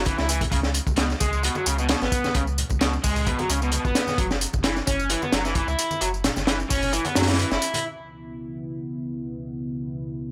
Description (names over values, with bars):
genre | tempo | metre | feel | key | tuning
breakbeat, breaks | 131 BPM | 4/4 | swing 54% on 16ths | C# minor | A4 = 440 Hz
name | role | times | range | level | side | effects
raw garage guitar | riff | 0.0-7.8 s | B2 to E4 | -28 LUFS | equal | overdrive, tube saturation, tape echo
saturated sub bass | bass | 0.0-7.6 s | F#1 to F#2 | -30 LUFS | equal | none
crunchy breakbeat drum kit | drums | 0.1-7.8 s | hi-hat, kick drum, snare drum | -27 LUFS | equal | none
tambourine | drums | 0.1-7.8 s | none | -34 LUFS | equal | overdrive
congas | percussion | 0.1-7.8 s | none | -40 LUFS | equal | none
dark analog pad | sustained chords | 7.8-10.3 s | C#3 to E4 | -33 LUFS | equal | chorus, sidechain pumping
room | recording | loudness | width
light reverb, small room ambience | dry, gritty hardware recording, transformer saturation | -24 LUFS | mono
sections
0.0-7.8 A section; 7.8-10.3 B section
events
kick drops out 6.9-7.8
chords
0.0 F#5; 0.5 C#5; 4.2 F#5; 7.8 C#m7